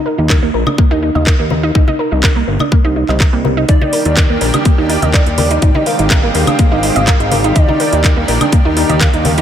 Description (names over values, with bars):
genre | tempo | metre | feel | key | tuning
progressive house | 124 BPM | 4/4 | straight | Eb major | A4 = 440 Hz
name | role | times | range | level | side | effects
analog pluck | arpeggios | 0.0-9.4 s | Bb3 to Eb5 | -16 LUFS | equal | chorus, sidechain pumping, tape echo
fat analog bass | bass | 0.2-9.4 s | G1 to Eb2 | -17 LUFS | equal | sidechain pumping
electronic kick drum | drums | 0.3-9.1 s | none | -11 LUFS | equal | none
house drum kit | drums | 0.3-9.4 s | handclaps, hi-hat, woodblock | -20 LUFS | equal | sidechain pumping on perc, sidechain pumping on hats
congas, cowbell and woodblock | percussion | 0.3-9.4 s | none | -24 LUFS | left 3 dB | none
plucky unison lead | melody | 3.7-9.4 s | D5 to F5 | -21 LUFS | right 1 dB | cassette tape, sidechain pumping, tape echo
lush unison pad | sustained chords | 3.7-9.4 s | Eb3 to G4 | -19 LUFS | right 1 dB | chorus, sidechain pumping
room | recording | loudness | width
moderate plate reverb, RT60 2.5 s | dreamy mix soaked in reverb | -10 LUFS | side -10 dB against mid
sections
0.0-9.4 A section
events
none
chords
0.0 Eb5; 1.8 Cm7; 3.7 Ebmaj7; 5.6 Abmaj7; 7.6 Ebmaj7